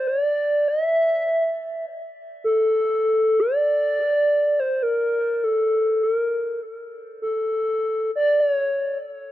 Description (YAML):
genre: hawaiian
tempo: free time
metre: none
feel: none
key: unclear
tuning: A4 = 440 Hz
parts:
  - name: hollow clarinet-like synth lead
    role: solo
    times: 0.0-9.0 s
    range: A4 to E5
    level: -20 LUFS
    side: equal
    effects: chorus, analog delay
room: moderate studio reverb, RT60 0.6 s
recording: dark, warm production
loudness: -19 LUFS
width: side -14 dB against mid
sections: 0.0-9.3 A section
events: none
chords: none